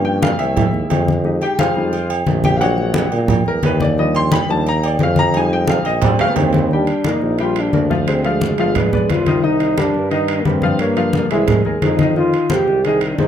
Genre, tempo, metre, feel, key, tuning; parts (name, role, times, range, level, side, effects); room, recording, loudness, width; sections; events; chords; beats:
Afro-Cuban jazz; 176 BPM; 4/4; straight; Eb major; A4 = 440 Hz
warm upright piano; accompaniment; 0.0-13.3 s; Eb3 to C6; -20 LUFS; left 3 dB
warm tuba; bass; 0.0-13.3 s; G1 to Bb2; -20 LUFS; right 1 dB
congas; percussion; 0.1-13.3 s; -19 LUFS; left 1 dB
timbales and agogo bells; percussion; 0.2-13.3 s; -25 LUFS; right 6 dB
breathy trombone; melody; 6.3-13.3 s; Ab3 to Ab4; -19 LUFS; right 1 dB
light reverb; close, detailed microphones; -14 LUFS; side -9 dB against mid
0.0-6.7 A section; 6.7-13.3 B section
upright piano solo 0.0-6.7; drum fill 5.7-6.7
0.0 Gm7b5; 0.6 C7alt; 1.3 Fm7; 2.6 Bb7alt; 4.0 Ebmaj9; 5.3 Fm7; 6.0 Bb13; 6.7 Ebmaj9; 8.1 Dm7b5; 8.8 G7b9; 9.4 Cm7; 10.8 Gm7b5; 11.5 Ab69/C; 12.2 Fm7
0.23 0.57 0.91 | 1.25 1.59 1.93 2.28 | 2.62 2.96 3.30 3.64 | 3.98 4.32 4.66 5.00 | 5.34 5.68 6.02 6.37 | 6.71 7.05 7.39 7.73 | 8.07 8.41 8.75 9.09 | 9.43 9.77 10.11 10.46 | 10.80 11.14 11.48 11.82 | 12.16 12.50 12.84 13.18